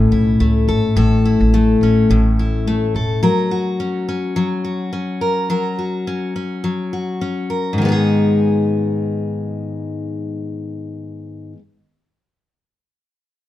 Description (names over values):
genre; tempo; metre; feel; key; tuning
acoustic pop; 106 BPM; 4/4; swing 55% on 16ths; G# minor; A4 = 440 Hz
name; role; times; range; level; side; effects
picked steel-string acoustic guitar; accompaniment; 0.0-11.6 s; G#2 to A#4; -17 LUFS; left 2 dB; none
upright bass; bass; 0.0-3.2 s; E1 to C#2; -17 LUFS; equal; none
room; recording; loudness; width
light reverb; none; -16 LUFS; side -14 dB against mid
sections
0.0-7.8 A section; 7.8-10.0 B section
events
none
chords
0.0 A; 3.2 F#; 7.8 G#m